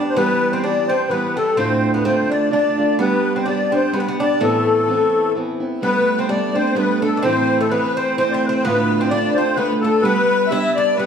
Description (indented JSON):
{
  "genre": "celtic folk",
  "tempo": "128 BPM",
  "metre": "3/4",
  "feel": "swing 55% on 8ths",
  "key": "unclear",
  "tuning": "A4 = 440 Hz",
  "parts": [
    { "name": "musette accordion", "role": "melody", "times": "0.0-11.1 s", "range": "A4 to E5", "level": "-18 LUFS", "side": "left 2 dB", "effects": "none" },
    { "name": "Irish bouzouki", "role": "second line", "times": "0.0-11.1 s", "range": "A3 to E4", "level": "-26 LUFS", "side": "right 1 dB", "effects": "none" },
    { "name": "picked steel-string acoustic guitar", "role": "accompaniment", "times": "0.0-11.1 s", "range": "D2 to G4", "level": "-20 LUFS", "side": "right 2 dB", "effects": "none" },
    { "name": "clear fiddle", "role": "second line", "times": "5.8-11.1 s", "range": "A4 to E5", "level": "-27 LUFS", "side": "left 7 dB", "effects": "none" }
  ],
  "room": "wet large studio reverb, RT60 1.2 s",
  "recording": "band playing live in one room",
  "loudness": "-16 LUFS",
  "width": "side -7 dB against mid",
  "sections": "0.0-5.8 A section; 5.8-11.1 A section",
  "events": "none",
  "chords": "0.2 Em; 1.6 Dm; 3.0 G; 4.4 Amadd9; 5.8 Gadd9; 7.2 Am; 8.6 Dm; 10.0 G",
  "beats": "| 0.17 0.64 1.11 | 1.58 2.06 2.53 | 3.00 3.47 3.94 | 4.41 4.88 5.35 | 5.82 6.29 6.76 | 7.23 7.70 8.17 | 8.64 9.11 9.58 | 10.04 10.51 10.98"
}